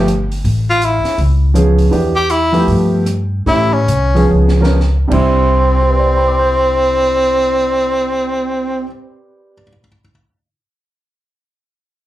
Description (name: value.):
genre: jazz, small-group swing and bop.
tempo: 114-162 BPM.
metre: 4/4.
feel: swing 63% on 8ths.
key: C major.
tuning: A4 = 439 Hz.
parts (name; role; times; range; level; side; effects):
warm concert grand piano; accompaniment; 0.0-10.1 s; C3 to G6; -17 LUFS; right 1 dB; slapback echo.
upright bass; bass; 0.0-8.8 s; G1 to A2; -15 LUFS; equal; none.
open jazz drum kit; drums; 0.1-5.2 s; crash cymbal, hi-hat, kick drum, rim click, snare drum; -25 LUFS; equal; none.
bright tenor saxophone; melody; 0.7-8.8 s; C4 to G4; -14 LUFS; equal; plate reverb, slapback echo.
room: light reverb.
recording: live gig heard through the venue's PA, club reverb.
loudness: -11 LUFS.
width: side -14 dB against mid.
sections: 0.0-5.3 A section; 5.3-9.5 B section.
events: slowing down 1.9-5.3; drum fill 4.3-4.8.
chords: 0.4 A5; 1.2 Db7; 1.9 Em7; 2.7 G9; 3.5 A7; 4.3 Db7; 5.0 C.